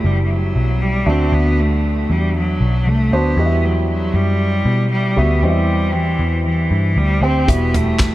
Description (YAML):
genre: piano-driven pop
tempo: 117 BPM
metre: 4/4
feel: straight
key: E minor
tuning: A4 = 440 Hz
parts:
  - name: warm cello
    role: melody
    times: 0.0-8.1 s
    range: E3 to C4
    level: -20 LUFS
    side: equal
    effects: none
  - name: warm grand piano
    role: accompaniment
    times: 0.0-8.1 s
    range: D3 to G5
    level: -22 LUFS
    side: right 2 dB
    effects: lush chorus
  - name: vintage muted picked electric bass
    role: bass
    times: 0.0-8.1 s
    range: E1 to B2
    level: -17 LUFS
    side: equal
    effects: none
  - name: damped 70s drum kit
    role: drums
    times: 7.5-8.1 s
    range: handclaps, hi-hat, kick drum, snare drum, toms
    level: -16 LUFS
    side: equal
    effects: none
room: light reverb, studio reverb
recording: none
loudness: -14 LUFS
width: side -16 dB against mid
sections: 0.0-8.1 A section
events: none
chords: 0.0 Emadd9; 1.1 Dadd9; 3.4 Emadd9; 5.4 C/E; 7.5 Emadd9